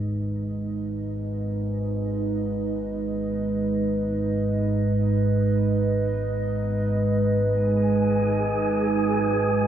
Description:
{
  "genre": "dark ambient drone",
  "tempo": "free time",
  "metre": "none",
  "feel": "none",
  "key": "unclear",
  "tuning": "A4 = 440 Hz",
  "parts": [
    { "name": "dark analog pad", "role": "sustained chords", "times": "0.0-9.7 s", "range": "G#3 to D#5", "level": "-26 LUFS", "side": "right 2 dB", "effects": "wide subtle chorus" },
    { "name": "gamelan-type bossed gongs", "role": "arpeggios", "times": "0.0-2.4 s", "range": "none", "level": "barely audible", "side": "none", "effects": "none" },
    { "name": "analog drone", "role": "drone", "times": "0.0-9.7 s", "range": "G#1 to G#2", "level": "-25 LUFS", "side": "equal", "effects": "chorus" },
    { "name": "wind-like tuned noise texture", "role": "texture", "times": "7.7-9.7 s", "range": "G#4 to G#5", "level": "-28 LUFS", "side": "equal", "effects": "built-in reverb" }
  ],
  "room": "wet echo chamber reverb, RT60 2.1 s",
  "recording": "echo-heavy mix, small room reverb",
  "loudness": "-22 LUFS",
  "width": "side -10 dB against mid",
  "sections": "0.0-9.7 A section",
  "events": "fade-in on synth drone 0.0-9.7; fade-in on analog synth pad 0.0-9.7",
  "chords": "0.0 B6/G#",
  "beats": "free time"
}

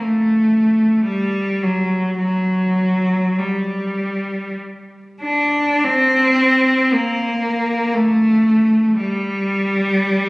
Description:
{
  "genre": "classical, free, expressive piece for unaccompanied cello",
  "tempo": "42-62 BPM",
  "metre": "3/4",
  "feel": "rubato",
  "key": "G minor",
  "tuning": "A4 = 441 Hz",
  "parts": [
    { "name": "clear cello", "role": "solo", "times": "0.0-10.3 s", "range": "F#3 to D4", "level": "-15 LUFS", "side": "equal", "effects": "none" }
  ],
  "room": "wet scoring stage reverb, RT60 1.8 s",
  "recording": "recorded on a phone in the room, studio reverb",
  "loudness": "-15 LUFS",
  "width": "side -26 dB against mid",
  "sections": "0.0-5.9 A section; 5.9-10.3 B section",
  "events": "none",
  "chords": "none",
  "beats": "0.02 1.06 | 2.20 3.39 4.59 | 5.85 6.93 7.95 | 8.99 9.99"
}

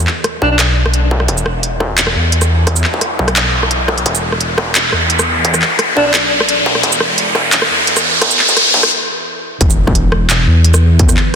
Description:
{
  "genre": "half-time drum and bass",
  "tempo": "173 BPM",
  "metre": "4/4",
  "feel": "swing 54% on 16ths, half-time",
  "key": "unclear",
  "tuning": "A4 = 440 Hz",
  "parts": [
    { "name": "deep dark ambient pad", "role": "sustained chords", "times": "0.1-11.4 s", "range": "E3 to E5", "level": "-31 LUFS", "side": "right 2 dB", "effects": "none" },
    { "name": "dark detuned saw bass", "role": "bass", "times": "0.0-11.2 s", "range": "E1 to E2", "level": "-15 LUFS", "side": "equal", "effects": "tube saturation" },
    { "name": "riser and impact", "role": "sound effects", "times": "0.1-11.0 s", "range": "none", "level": "-16 LUFS", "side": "equal", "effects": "none" },
    { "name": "industrial drum kit", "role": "drums", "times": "0.1-11.2 s", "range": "handclaps, hi-hat, rim click, shaker", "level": "-15 LUFS", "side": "equal", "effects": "soft clipping on snare" },
    { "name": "breathy alto saxophone", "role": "melody", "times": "0.4-0.6, 6.0-6.1 s", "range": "D4", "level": "-18 LUFS", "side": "equal", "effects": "ping-pong delay" },
    { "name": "electronic kick drum", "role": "drums", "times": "0.4-11.1 s", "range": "none", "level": "-17 LUFS", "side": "equal", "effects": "distortion, high-pass filter on kick" }
  ],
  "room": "moderate huge ambient reverb, RT60 4.1 s",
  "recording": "dense, heavily limited modern master, high-pass filter",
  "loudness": "-10 LUFS",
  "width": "side -7 dB against mid",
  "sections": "0.0-9.6 A section; 9.6-11.4 B section",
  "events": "build-up 0.0-9.6; filter sweep 0.0-9.6; riser 0.1-8.9; break 8.9-9.6; drop 9.6-11.4; impact 9.6-11.0",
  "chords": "0.0 E5",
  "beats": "0.24 0.59 0.94 | 1.28 1.63 1.98 2.33 | 2.67 3.02 3.37 3.71 | 4.06 4.41 4.75 5.10 | 5.45 5.79 6.14 6.49 | 6.83 7.18 7.53 7.88 | 8.22 8.57 8.91 9.26 | 9.61 9.96 10.30 10.65 | 11.00 11.34"
}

